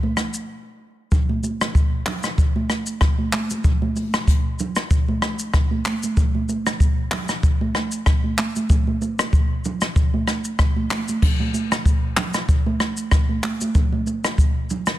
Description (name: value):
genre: afrobeats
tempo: 95 BPM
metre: 4/4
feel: swing 55% on 16ths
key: none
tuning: none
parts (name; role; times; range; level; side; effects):
- congas; percussion; 0.0-14.9 s; none; -26 LUFS; right 3 dB; none
- jazz brush drum kit; drums; 0.2-15.0 s; crash cymbal, handclaps, hi-hat, kick drum, rim click, shaker; -19 LUFS; equal; soft clipping on snare
room: small room ambience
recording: dense, heavily limited modern master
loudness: -18 LUFS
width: side -14 dB against mid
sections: 0.0-11.2 A section; 11.2-15.0 A section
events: break 0.5-1.1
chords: none